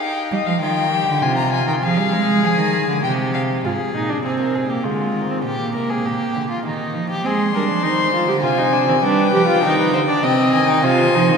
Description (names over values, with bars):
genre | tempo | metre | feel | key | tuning
classical, baroque-style fugue for string quartet | 100 BPM | 3/4 | straight | F minor | A4 = 439 Hz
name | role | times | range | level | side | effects
warm violin | melody | 0.0-3.4, 7.2-11.4 s | Eb5 to C6 | -21 LUFS | left 6 dB | none
warm violin | second line | 0.0-11.4 s | Eb4 to Eb5 | -23 LUFS | left 2 dB | none
rich cello | bass | 0.3-11.4 s | Ab2 to Ab3 | -21 LUFS | right 3 dB | none
warm viola | accompaniment | 3.6-11.4 s | Ab3 to G4 | -20 LUFS | right 2 dB | none
room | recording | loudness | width
wet cathedral reverb, RT60 4.1 s | minimal, uncompressed stereo recording | -16 LUFS | side -6 dB against mid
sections
0.0-3.6 A section; 3.6-11.4 B section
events
none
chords
0.0 Ebmaj9; 1.2 Ab69/C; 1.8 Ddim (rootless); 3.0 C5; 3.6 Fm/Ab (rootless); 4.9 Ddim; 5.5 Gm/Bb; 6.7 Eb; 7.2 Ab; 8.4 Dm7b5/C; 9.0 G7; 10.2 Cm; 10.8 Ab/C